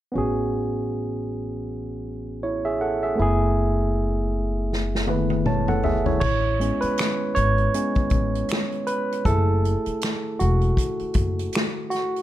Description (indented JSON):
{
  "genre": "R&B, neo-soul",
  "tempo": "79 BPM",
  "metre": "4/4",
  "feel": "swing 59% on 16ths",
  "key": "A major",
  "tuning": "A4 = 440 Hz",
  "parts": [
    { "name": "barky tine electric piano", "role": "accompaniment", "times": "0.1-12.2 s", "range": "G#3 to A5", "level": "-24 LUFS", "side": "right 2 dB", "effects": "overdrive" },
    { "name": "upright bass", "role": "bass", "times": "0.2-11.5 s", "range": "E1 to A1", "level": "-25 LUFS", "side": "left 1 dB", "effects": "none" },
    { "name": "unplugged drum kit", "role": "drums", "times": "4.7-12.2 s", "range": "crash cymbal, finger snaps, hi-hat, kick drum, snare drum, toms", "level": "-25 LUFS", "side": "left 1 dB", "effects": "none" }
  ],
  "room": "light reverb",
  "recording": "none",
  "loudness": "-21 LUFS",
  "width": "side -13 dB against mid",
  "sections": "0.1-6.2 A section; 6.2-12.2 B section",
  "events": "drum fill 4.7-6.2; tine electric piano solo 6.2-12.2",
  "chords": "0.1 Amaj9; 3.2 F#m9; 6.2 Amaj9; 9.3 F#m9"
}